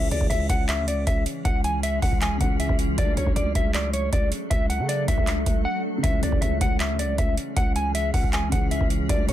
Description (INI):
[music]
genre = hip hop, trap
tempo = 157 BPM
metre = 4/4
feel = half-time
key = C# phrygian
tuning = A4 = 440 Hz
[part]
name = mellow electric guitar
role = melody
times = 0.0-9.3 s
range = C#5 to G#5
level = -28 LUFS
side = equal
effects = low-pass filter, digital delay
[part]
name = dark concert grand piano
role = accompaniment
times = 0.0-9.3 s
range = C#3 to D4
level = -33 LUFS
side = equal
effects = low-pass filter
[part]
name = granular cloud pad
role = sustained chords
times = 1.0-9.3 s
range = E3 to A4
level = -32 LUFS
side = equal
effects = built-in reverb
[part]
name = growling 808-style bass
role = bass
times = 0.0-9.3 s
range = C#2 to C#3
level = -27 LUFS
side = equal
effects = none
[part]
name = booming analog drum machine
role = drums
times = 0.1-9.3 s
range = handclaps, hi-hat, kick drum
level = -24 LUFS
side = equal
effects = overdrive
[sound]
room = little or no reverb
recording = dense, heavily limited modern master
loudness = -21 LUFS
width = side -12 dB against mid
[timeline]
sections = 0.0-9.3 A section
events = break 5.7-6.0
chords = 0.0 C#m; 3.0 D/C#; 6.0 C#m